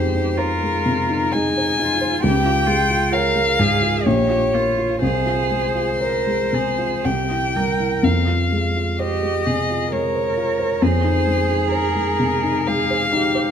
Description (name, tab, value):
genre	classical, slow romantic movement for piano trio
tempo	55-68 BPM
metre	3/4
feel	rubato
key	F minor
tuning	A4 = 438 Hz
part	warm violin	melody	0.0-13.5 s	Bb4 to Ab5	-21 LUFS	left 4 dB	none
part	rich cello	second line	0.0-13.5 s	Eb4 to Bb4	-24 LUFS	right 8 dB	none
part	dark baby grand piano	accompaniment	0.0-13.5 s	Bb1 to Db5	-20 LUFS	left 1 dB	none
room	moderate recital hall reverb, RT60 1.7 s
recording	none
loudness	-17 LUFS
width	side -8 dB against mid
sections	0.0-13.5 A section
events	none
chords	0.0 Ab/F; 2.2 Db; 4.1 Bbm; 5.0 Fm/C; 7.1 C; 8.0 Fm; 10.8 Ab/F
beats	0.38 1.33 | 2.23 3.12 4.05 | 5.01 6.00 7.05 | 8.04 8.98 9.91 | 10.82 11.71 12.66